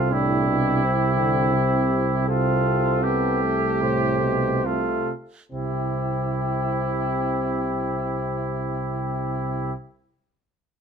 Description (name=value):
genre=classical, brass quintet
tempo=68-85 BPM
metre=4/4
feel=rubato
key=C major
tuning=A4 = 440 Hz
part: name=dark cornet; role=melody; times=0.0-9.7 s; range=G4 to C5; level=-28 LUFS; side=left 8 dB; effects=none
part: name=clear trumpet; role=second line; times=0.0-9.7 s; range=E4 to G4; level=-26 LUFS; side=right 7 dB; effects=none
part: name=clear trombone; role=accompaniment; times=0.0-9.7 s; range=A2 to D3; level=-31 LUFS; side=right 4 dB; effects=none
part: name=warm French horn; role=accompaniment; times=0.0-9.7 s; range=A3 to D4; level=-29 LUFS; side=left 4 dB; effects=none
part: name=dark tuba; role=bass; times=0.0-9.7 s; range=C2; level=-26 LUFS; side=right 3 dB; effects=none
room=moderate studio reverb, RT60 0.8 s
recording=minimal, uncompressed stereo recording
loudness=-21 LUFS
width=side -6 dB against mid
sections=0.0-5.5 A section; 5.5-9.0 B section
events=slowing down 0.0-5.5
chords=0.0 C; 2.3 F/C; 5.5 C